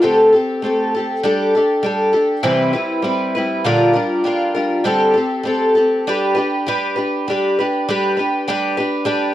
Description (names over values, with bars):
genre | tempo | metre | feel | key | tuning
rock | 100 BPM | 4/4 | straight | G mixolydian | A4 = 438 Hz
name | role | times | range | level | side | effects
picked twelve-string acoustic guitar | solo | 0.0-9.3 s | Bb2 to B4 | -15 LUFS | equal | none
room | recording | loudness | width
light reverb | dry, close 1970s-style studio recording | -15 LUFS | side -13 dB against mid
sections
0.0-6.1 A section; 6.1-9.3 B section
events
none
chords
0.0 D7sus4; 1.2 Gsus2; 2.4 Cmaj7; 3.6 Bb6; 4.9 D7sus4; 6.1 G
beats
0.03 0.63 | 1.24 1.84 2.44 3.05 | 3.65 4.25 4.85 5.46 | 6.06 6.66 7.26 7.86 | 8.46 9.06